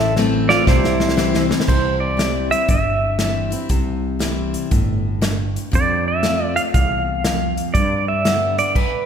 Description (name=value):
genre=honky-tonk and classic country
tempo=119 BPM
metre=4/4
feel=swing 65% on 8ths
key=C major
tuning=A4 = 440 Hz
part: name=pedal steel guitar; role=melody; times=0.0-9.1 s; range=E4 to F5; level=-19 LUFS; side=right 2 dB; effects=none
part: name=picked steel-string acoustic guitar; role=accompaniment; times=0.0-8.7 s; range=E2 to G4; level=-23 LUFS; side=left 3 dB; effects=none
part: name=warm upright piano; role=accompaniment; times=0.0-1.7 s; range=E4 to C5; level=-31 LUFS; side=right 3 dB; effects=none
part: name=fretless electric bass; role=bass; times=0.0-8.6 s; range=G1 to G2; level=-23 LUFS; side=right 1 dB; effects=none
part: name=natural country drum kit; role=drums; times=0.2-8.9 s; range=crash cymbal, hi-hat, kick drum, snare drum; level=-21 LUFS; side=equal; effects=none
room=moderate concert hall reverb, RT60 2.0 s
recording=recorded in a church or concert hall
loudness=-16 LUFS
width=side -8 dB against mid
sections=0.0-1.7 A section; 1.7-9.1 B section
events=drum fill 0.0-1.7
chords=0.0 Am; 0.7 C; 5.7 F; 7.7 G